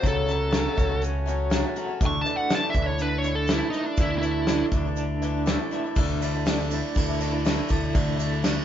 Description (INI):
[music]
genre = folk rock and heartland rock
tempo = 121 BPM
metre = 4/4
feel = straight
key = unclear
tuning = A4 = 440 Hz
[part]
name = smooth overdriven lead guitar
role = melody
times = 0.0-4.7 s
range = D4 to C#6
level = -26 LUFS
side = right 2 dB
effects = none
[part]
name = picked swing-style acoustic guitar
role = accompaniment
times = 0.0-8.6 s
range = C#3 to F#4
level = -32 LUFS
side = left 4 dB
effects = none
[part]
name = pedal harmonium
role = sustained chords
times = 0.0-8.6 s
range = E4 to A5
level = -37 LUFS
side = right 3 dB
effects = none
[part]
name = electric guitar through a small old amp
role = riff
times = 0.0-8.6 s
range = C#3 to F#4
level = -31 LUFS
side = right 2 dB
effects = tremolo
[part]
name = picked electric bass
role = bass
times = 0.0-8.6 s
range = C#2 to D2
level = -28 LUFS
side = left 1 dB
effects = none
[part]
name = soft brush drum kit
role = drums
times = 0.0-8.6 s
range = crash cymbal, hi-hat, kick drum, ride cymbal, snare drum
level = -26 LUFS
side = equal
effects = none
[part]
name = tube shaker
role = percussion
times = 0.1-8.6 s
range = none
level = -47 LUFS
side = right 7 dB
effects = none
[sound]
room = moderate studio reverb, RT60 0.7 s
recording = band playing live in one room, nothing above 7.5 kHz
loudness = -22 LUFS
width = side -10 dB against mid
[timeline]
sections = 0.0-6.0 A section; 6.0-8.6 B section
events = lead electric guitar solo 0.0-6.0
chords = 0.0 F#m/C#; 2.0 Dsus2